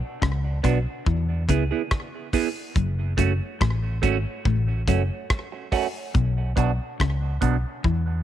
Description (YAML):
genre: roots reggae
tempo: 71 BPM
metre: 4/4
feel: straight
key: unclear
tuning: A4 = 440 Hz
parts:
  - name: clean electric guitar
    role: riff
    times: 0.2-8.1 s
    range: F#2 to E3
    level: -29 LUFS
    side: left 7 dB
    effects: wide subtle chorus
  - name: vintage muted fingered electric bass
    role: bass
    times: 0.2-8.2 s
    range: F#1 to E2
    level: -24 LUFS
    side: equal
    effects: none
  - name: damped 70s drum kit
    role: drums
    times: 0.2-8.1 s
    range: hi-hat, kick drum, rim click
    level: -24 LUFS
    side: equal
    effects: none
  - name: semi-hollow electric guitar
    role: accompaniment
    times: 0.6-7.6 s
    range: A3 to G#4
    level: -28 LUFS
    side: right 10 dB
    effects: phaser, dub echo
room: light reverb, studio reverb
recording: 1960s-style stereo with parts hard left and right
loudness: -22 LUFS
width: side -11 dB against mid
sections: 0.0-8.2 A section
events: none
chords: 0.0 Bm; 1.1 E; 2.8 F#m; 6.1 Bm